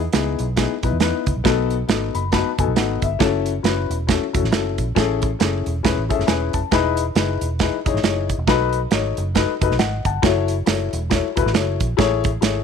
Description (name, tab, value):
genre	uptempo 1960s-style soul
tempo	137 BPM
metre	4/4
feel	swing 59% on 8ths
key	E major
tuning	A4 = 440 Hz
part	vintage muted fingered electric bass	bass	0.0-12.6 s	E1 to E2	-24 LUFS	right 1 dB	none
part	dark upright piano	accompaniment	0.1-12.6 s	B3 to B5	-22 LUFS	left 13 dB	none
part	natural country drum kit	drums	0.1-12.6 s	hi-hat, kick drum, snare drum	-21 LUFS	right 6 dB	none
room	studio ambience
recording	1960s-style stereo with parts hard left and right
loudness	-17 LUFS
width	side -6 dB against mid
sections	0.0-12.6 A section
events	upright piano fill 1.9-3.2, 5.8-6.7, 9.6-10.2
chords	0.0 Emaj7; 1.5 B7; 3.2 F#m7; 5.0 Amaj7; 6.7 Emaj7; 8.5 B7; 10.2 F#m7; 12.0 Amaj7